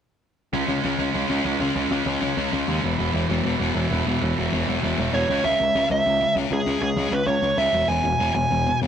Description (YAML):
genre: punk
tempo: 196 BPM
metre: 4/4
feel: straight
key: unclear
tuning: A4 = 440 Hz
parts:
  - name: cranked stack guitar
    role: riff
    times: 0.5-5.4 s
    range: E2 to C#4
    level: -27 LUFS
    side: right 9 dB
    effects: overdrive
  - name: sludgy distorted guitar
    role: riff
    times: 0.5-8.9 s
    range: E2 to C#4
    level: -25 LUFS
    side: left 6 dB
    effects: overdrive
  - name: growling picked electric bass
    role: bass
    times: 0.5-8.9 s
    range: E1 to D#2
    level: -26 LUFS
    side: equal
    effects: overdrive
  - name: smooth overdriven lead guitar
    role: melody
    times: 5.1-8.8 s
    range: G#4 to G#5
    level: -21 LUFS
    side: right 2 dB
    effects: ping-pong delay
room: light reverb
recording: rough rehearsal-room recording, tube saturation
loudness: -20 LUFS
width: side -8 dB against mid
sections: 0.5-5.4 A section; 5.4-8.9 B section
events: none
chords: 0.5 C#5; 2.8 E5; 5.3 C#5; 7.7 E